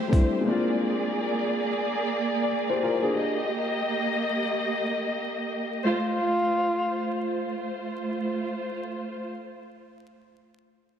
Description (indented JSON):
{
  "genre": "hip hop",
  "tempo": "free time",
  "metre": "none",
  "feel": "none",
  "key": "unclear",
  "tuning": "A4 = 439 Hz",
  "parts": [
    { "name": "dark baby grand piano", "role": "accompaniment", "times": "0.0-3.3 s", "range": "G3 to C5", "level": "-28 LUFS", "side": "left 3 dB", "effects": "cassette tape, high-pass filter, low-pass filter" },
    { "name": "dark studio string section", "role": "stabs", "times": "0.0-9.3 s", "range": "A3 to Eb5", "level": "-27 LUFS", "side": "right 1 dB", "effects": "high-pass filter, low-pass filter, diffuse ambient delay" },
    { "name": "mellow tenor saxophone", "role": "melody", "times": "5.9-7.8 s", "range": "F4", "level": "-28 LUFS", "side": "equal", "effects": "high-pass filter, low-pass filter, diffuse ambient delay" }
  ],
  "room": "wet lush hall reverb, RT60 2.8 s",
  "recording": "dreamy mix soaked in reverb, vinyl crackle",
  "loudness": "-25 LUFS",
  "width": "side -8 dB against mid",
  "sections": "0.0-5.9 A section; 5.9-8.6 B section",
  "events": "none",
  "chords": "0.5 Bb7; 3.2 Eb; 5.9 F/A"
}